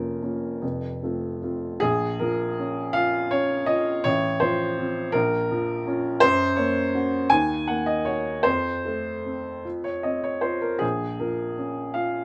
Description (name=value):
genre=classical, romantic character piece for solo piano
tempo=49-56 BPM (dotted quarters)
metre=6/8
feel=rubato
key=Bb minor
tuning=A4 = 439 Hz
part: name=warm upright piano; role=solo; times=0.0-12.2 s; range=F1 to Ab5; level=-25 LUFS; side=equal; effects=none
room=moderate studio reverb, RT60 0.7 s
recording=none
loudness=-25 LUFS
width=mono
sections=0.0-1.8 A section; 1.8-12.2 B section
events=none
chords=0.0 Bbm/F; 0.6 F; 1.8 Bbm; 4.1 F/A; 5.1 Bbm; 6.2 Gb; 7.3 Ebm; 8.5 F; 10.8 Bbm